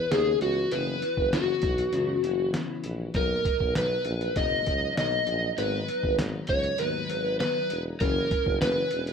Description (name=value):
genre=indie pop, bedroom pop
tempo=99 BPM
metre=4/4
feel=straight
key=unclear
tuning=A4 = 440 Hz
part: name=overdriven slide guitar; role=melody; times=0.0-9.1 s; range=F#4 to D#5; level=-26 LUFS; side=left 1 dB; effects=wide subtle chorus, plate reverb
part: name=semi-hollow electric guitar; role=accompaniment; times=0.0-9.1 s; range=F#2 to E4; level=-36 LUFS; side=left 3 dB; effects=ensemble chorus, warbly pitch drift
part: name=warm tuba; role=bass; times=0.0-9.1 s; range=E1 to D#2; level=-32 LUFS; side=equal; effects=none
part: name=trip hop sampler-style drum kit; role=drums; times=0.1-9.1 s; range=hi-hat, kick drum, snare drum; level=-30 LUFS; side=equal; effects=overdrive
room=light reverb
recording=rough home demo mix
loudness=-24 LUFS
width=side -6 dB against mid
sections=0.0-9.1 A section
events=none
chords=0.0 F#7sus4; 3.1 Bmaj7; 5.6 G#m7; 8.0 F#7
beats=0.11 | 0.72 1.32 1.93 2.54 | 3.15 3.75 4.36 4.97 | 5.58 6.19 6.79 7.40 | 8.01 8.62